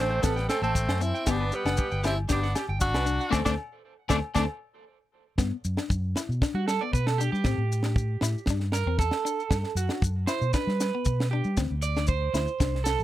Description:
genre	highlife guitar band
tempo	116 BPM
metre	4/4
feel	straight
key	G major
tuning	A4 = 441 Hz
part	edgy tenor saxophone	melody	0.0-4.4 s	B3 to F#4	-30 LUFS	equal	none
part	growling trumpet	second line	0.0-4.4 s	G3 to D4	-38 LUFS	left 4 dB	none
part	electric guitar at the edge of break-up	accompaniment	0.0-12.8 s	A3 to E4	-33 LUFS	left 9 dB	none
part	electric guitar at the edge of break-up	arpeggios	0.0-13.0 s	F#4 to A5	-31 LUFS	right 7 dB	none
part	fingered electric bass	bass	0.0-13.0 s	F#1 to G3	-28 LUFS	equal	none
part	tight funk drum kit	drums	0.2-13.0 s	kick drum, snare drum	-28 LUFS	equal	none
part	maracas	percussion	0.2-13.0 s	none	-38 LUFS	left 4 dB	none
part	agogo bells	percussion	0.5-4.5 s	none	-36 LUFS	left 6 dB	none
room	little or no reverb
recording	none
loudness	-24 LUFS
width	side -14 dB against mid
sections	0.0-5.4 A section; 5.4-13.0 B section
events	band accent 3.3-5.4; drum fill 5.1; clean electric guitar solo 5.4-13.0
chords	0.0 Am7; 1.3 Gmaj7; 3.3 D5; 5.4 Gmaj7; 7.5 Am7; 9.5 Gmaj7; 11.6 D5

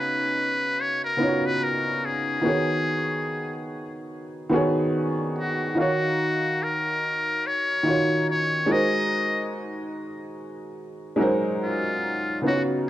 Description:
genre	hip hop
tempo	72 BPM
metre	4/4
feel	swing 56% on 16ths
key	unclear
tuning	A4 = 441 Hz
part	trumpet with metal mute	melody	0.0-12.6 s	F4 to Eb5	-25 LUFS	left 1 dB	low-pass filter, plate reverb, tape echo
part	felt-muted upright piano	accompaniment	0.0-12.9 s	Db3 to F5	-25 LUFS	equal	cassette tape, low-pass filter, plate reverb
room	moderate studio ambience, RT60 0.5 s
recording	none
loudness	-22 LUFS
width	side -13 dB against mid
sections	0.0-12.4 A section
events	none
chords	0.0 Db7sus4; 2.4 B69/D#; 5.8 Ebm9; 8.7 Ab9

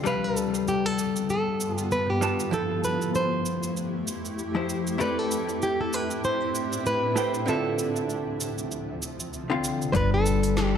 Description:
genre	sunset chillout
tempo	97 BPM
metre	4/4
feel	swing 57% on 16ths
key	D dorian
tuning	A4 = 438 Hz
part	vintage hollow-body jazz guitar	accompaniment	0.0-10.8 s	D3 to A5	-28 LUFS	moving between left 10 dB and right 6 dB	auto-pan, digital delay
part	shimmering ambient pad	sustained chords	0.0-9.9 s	D2 to G4	-32 LUFS	equal	chorus, built-in reverb
part	flamenco guitar	melody	0.1-10.8 s	G4 to C5	-28 LUFS	right 1 dB	digital delay
part	smooth R&B drum kit	drums	0.1-10.7 s	cabasa, hi-hat, snare drum	-35 LUFS	right 3 dB	none
part	upright bass	bass	9.9-10.8 s	G1	-25 LUFS	equal	none
part	electronic kick drum	drums	9.9-10.1 s	none	-29 LUFS	equal	none
room	moderate plate reverb, RT60 1.8 s, digital ambience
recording	dark, warm production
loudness	-24 LUFS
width	side -8 dB against mid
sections	0.0-10.0 A section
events	none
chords	0.1 G7; 2.5 Fmaj9; 5.0 Am11; 7.5 Dm9; 10.0 G7

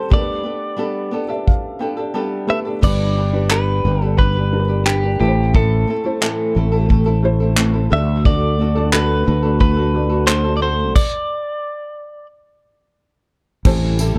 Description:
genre	acoustic pop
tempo	89 BPM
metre	4/4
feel	straight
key	unclear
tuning	A4 = 443 Hz
part	direct-recorded clean electric guitar	melody	0.0-12.3 s	G4 to E5	-25 LUFS	equal	subtle chorus
part	felt-muted upright piano	accompaniment	0.0-14.2 s	G3 to B5	-29 LUFS	equal	none
part	flamenco guitar	accompaniment	0.0-14.2 s	A2 to B4	-25 LUFS	equal	none
part	unplugged drum kit	drums	0.1-14.1 s	crash cymbal, handclaps, kick drum, tambourine	-19 LUFS	equal	none
part	sustaining fretless electric bass	bass	2.8-14.2 s	G1 to D2	-19 LUFS	equal	none
part	ethereal airy pad	sustained chords	14.1-14.2 s	C3 to G4	-34 LUFS	equal	none
room	studio ambience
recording	dark, warm production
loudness	-17 LUFS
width	mono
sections	0.0-2.8 A section; 2.8-13.6 B section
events	felt piano fill 0.8-2.8; stop 11.0-13.6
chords	0.1 Gadd9; 2.8 G; 5.2 Am; 7.9 D; 13.6 Am7

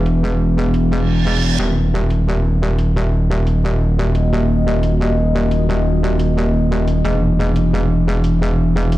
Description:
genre	dark technical drum and bass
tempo	176 BPM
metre	4/4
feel	straight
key	Eb phrygian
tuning	A4 = 440 Hz
part	deep dark ambient pad	sustained chords	0.0-9.0 s	Bb3 to E5	-22 LUFS	equal	chorus, built-in reverb
part	metallic wobble bass	bass	0.0-9.0 s	Eb1 to E1	-15 LUFS	equal	chorus, tube saturation
part	electronic hi-hat	drums	0.1-9.0 s	none	-37 LUFS	right 1 dB	low-pass filter on hats
part	reverse cymbal	sound effects	1.0-1.6 s	none	-23 LUFS	right 4 dB	none
room	light reverb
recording	played on a big sound system in a bare room, large studio reverb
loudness	-14 LUFS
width	side -16 dB against mid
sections	0.0-9.0 A section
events	filter sweep on ambient pad 0.0-9.0; reverse cymbal 1.0-1.6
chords	0.0 E; 1.6 Ebm; 7.0 E

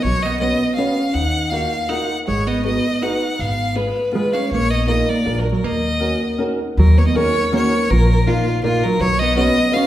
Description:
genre	musette waltz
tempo	161 BPM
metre	3/4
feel	rubato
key	Eb minor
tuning	A4 = 440 Hz
part	clear violin	melody	0.0-9.9 s	F4 to Gb5	-21 LUFS	left 1 dB	none
part	hollow-body jazz guitar	second line	0.0-9.9 s	Bb2 to Eb4	-21 LUFS	right 2 dB	none
part	upright bass	bass	0.0-9.5 s	Ab1 to Eb2	-19 LUFS	equal	none
part	fingerpicked old ladder-braced acoustic guitar	accompaniment	0.4-9.9 s	Bb3 to B4	-24 LUFS	equal	none
room	wet recital hall reverb, RT60 1.4 s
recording	recorded in a church or concert hall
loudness	-16 LUFS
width	side -13 dB against mid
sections	0.0-6.8 A section; 6.8-9.9 A section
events	none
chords	0.0 Bsus2; 1.1 Ebmadd9; 2.3 Abm7; 3.4 Fdim/Ab; 4.5 Bb7sus4; 5.3 Bb7; 5.6 Ebm7; 7.9 Bbsus4; 9.0 Bsus2

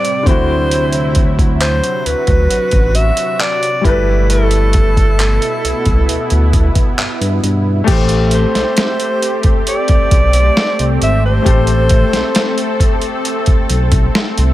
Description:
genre	contemporary R&B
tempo	67 BPM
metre	4/4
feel	straight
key	A dorian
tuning	A4 = 440 Hz
part	breathy alto saxophone	melody	0.0-13.0 s	A4 to E5	-18 LUFS	equal	digital delay
part	clear concert grand piano	accompaniment	0.0-14.5 s	A2 to D5	-22 LUFS	left 5 dB	none
part	lush unison pad	sustained chords	0.0-14.5 s	B2 to A4	-21 LUFS	equal	chorus
part	dusty soul sampler-style drum kit	drums	0.0-14.5 s	crash cymbal, handclaps, hi-hat, kick drum, snare drum	-15 LUFS	equal	overdrive
part	smooth synth bass	bass	0.3-14.5 s	G1 to G2	-14 LUFS	equal	none
room	little or no reverb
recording	none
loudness	-11 LUFS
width	side -15 dB against mid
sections	0.0-7.9 A section; 7.9-14.5 B section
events	none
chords	0.3 D9; 3.8 G69; 7.9 Am9

